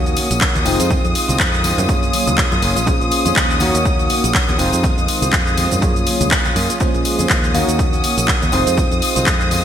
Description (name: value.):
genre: filtered disco house.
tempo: 122 BPM.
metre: 4/4.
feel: swing 57% on 16ths.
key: unclear.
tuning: A4 = 442 Hz.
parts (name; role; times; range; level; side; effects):
tine electric piano; accompaniment; 0.0-9.6 s; Gb3 to F5; -22 LUFS; equal; phaser, sidechain pumping.
rich symphonic string section; sustained chords; 0.0-9.6 s; Eb6; -22 LUFS; left 3 dB; vintage 12-bit sampler grit, sidechain pumping.
direct-recorded clean electric guitar; riff; 0.0-9.6 s; Eb3 to Gb4; -25 LUFS; right 3 dB; sidechain pumping.
fingered electric bass; bass; 0.0-9.6 s; F1 to Gb2; -22 LUFS; equal; sidechain pumping.
house drum kit; drums; 0.1-9.6 s; cabasa, handclaps, hi-hat; -20 LUFS; equal; sidechain pumping on hats, sidechain pumping on perc, sidechain pumping on cymbals, gated reverb.
tambourine and congas; percussion; 0.2-9.6 s; none; -28 LUFS; left 2 dB; none.
electronic kick drum; drums; 0.4-9.4 s; none; -19 LUFS; equal; none.
room: light reverb.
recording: bright 1980s-style digital production.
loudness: -14 LUFS.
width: side -9 dB against mid.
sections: 0.0-9.6 A section.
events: none.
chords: 0.0 Ebm7; 0.7 Fm7; 1.9 Gbmaj7; 2.9 Bbm7; 3.6 Ebm7; 4.6 Fm7; 5.8 Gbmaj7; 6.8 Bbm7; 7.5 Ebm7; 8.5 Fm7.